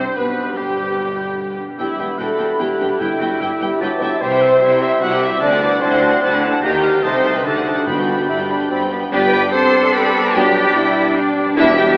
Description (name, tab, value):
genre	classical, dramatic, fast romantic movement for symphony orchestra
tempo	148 BPM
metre	3/4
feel	straight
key	G major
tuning	A4 = 436 Hz
part	warm symphonic violin section	melody	0.0-11.8 s	E4 to B5	-26 LUFS	equal	none
part	bright flute section	second line	0.0-12.0 s	G4 to D6	-26 LUFS	equal	none
part	clear clarinet	second line	0.0-12.0 s	G3 to C5	-23 LUFS	equal	none
part	clear oboe	second line	0.0-12.0 s	G4 to A5	-24 LUFS	equal	none
part	rich symphonic violin section	second line	0.0-12.0 s	A3 to C6	-24 LUFS	equal	none
part	rich symphonic viola section	accompaniment	0.0-11.8 s	B3 to F#5	-26 LUFS	equal	none
part	warm bassoon	accompaniment	0.0-12.0 s	E3 to E4	-25 LUFS	equal	none
part	mellow French horn section	sustained chords	0.0-12.0 s	E3 to E5	-20 LUFS	equal	none
part	concert harp	arpeggios	0.0-12.0 s	E2 to C6	-29 LUFS	equal	none
part	clear symphonic double bass section	bass	0.0-11.9 s	E1 to G2	-29 LUFS	equal	none
part	rich symphonic cello section	bass	0.0-12.0 s	E2 to B4	-22 LUFS	equal	none
part	timpani	percussion	3.0-3.6, 7.9-8.5 s	G2	-34 LUFS	equal	none
part	clear trombone section	sustained chords	9.1-12.0 s	G3 to B3	-26 LUFS	equal	none
part	clear trumpet	stabs	9.1-12.0 s	D4	-23 LUFS	equal	none
part	warm tuba	bass	9.1-11.9 s	E1 to B1	-21 LUFS	equal	none
room	wet cathedral reverb, RT60 5.4 s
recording	in a vast, echoing space, AM radio sound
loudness	-14 LUFS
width	side -35 dB against mid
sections	0.0-9.1 A section; 9.1-12.0 A section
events	none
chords	0.0 G; 1.8 Em7; 3.0 Em/G; 4.2 C; 5.4 D7; 6.6 Eb; 7.0 Am7b5/C; 7.5 D7; 7.9 G; 10.3 G/B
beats	0.17 | 0.58 0.98 1.39 | 1.79 2.20 2.60 | 3.00 3.41 3.81 | 4.21 4.61 5.02 | 5.42 5.82 6.23 | 6.63 7.04 7.45 | 7.87 8.29 8.71 | 9.12 9.53 9.94 | 10.35 10.75 11.16 | 11.57